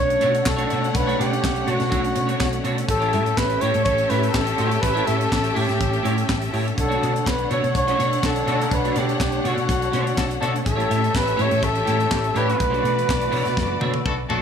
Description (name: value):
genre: disco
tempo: 124 BPM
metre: 4/4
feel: straight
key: B minor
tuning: A4 = 440 Hz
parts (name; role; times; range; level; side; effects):
- breathy flugelhorn; melody; 0.0-14.3 s; F#4 to C#5; -23 LUFS; equal; none
- rich studio string section; second line; 0.0-14.4 s; A3 to F#5; -28 LUFS; left 1 dB; none
- warm studio string section; sustained chords; 0.0-14.4 s; D3 to G4; -30 LUFS; left 1 dB; none
- hollow-body short-scale fingered electric bass; bass; 0.0-14.4 s; F#1 to B2; -25 LUFS; equal; none
- semi-hollow electric guitar; accompaniment; 0.1-14.4 s; A3 to E5; -28 LUFS; right 3 dB; ensemble chorus
- tight funk drum kit; drums; 0.1-14.4 s; handclaps, hi-hat, kick drum, snare drum, toms; -26 LUFS; equal; none
- clear horn section; stabs; 8.2-14.4 s; G3 to A4; -28 LUFS; left 4 dB; none
room: light reverb, small room ambience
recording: studio ambience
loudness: -19 LUFS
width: side -7 dB against mid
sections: 0.0-14.4 A section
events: drum fill 13.6-14.4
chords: 0.0 Bm9; 2.9 A7; 6.8 Bm9; 10.7 A7; 12.6 Bm9